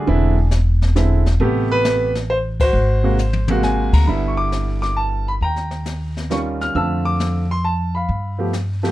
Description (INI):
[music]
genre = jazz piano trio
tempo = 135 BPM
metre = 3/4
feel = swing 68% on 8ths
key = unclear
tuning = A4 = 440 Hz
[part]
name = clear grand piano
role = melody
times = 0.0-8.9 s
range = C3 to F6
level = -20 LUFS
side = right 1 dB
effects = none
[part]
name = upright bass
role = bass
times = 0.1-8.9 s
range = E1 to G2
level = -19 LUFS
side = equal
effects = none
[part]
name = jazz brush drum kit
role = drums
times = 0.1-8.9 s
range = brushed snare drum, crash cymbal, hi-hat, kick drum, snare drum, toms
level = -26 LUFS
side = left 2 dB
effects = none
[sound]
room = light reverb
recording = none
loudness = -16 LUFS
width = side -16 dB against mid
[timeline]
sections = 0.0-4.1 A section; 4.1-8.9 B section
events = band accent 2.5; drum fill 3.2-3.6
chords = 0.1 Eaug7; 1.4 Am9; 2.7 Ab9; 4.1 G6; 5.4 Eb9; 6.8 F6; 8.1 G9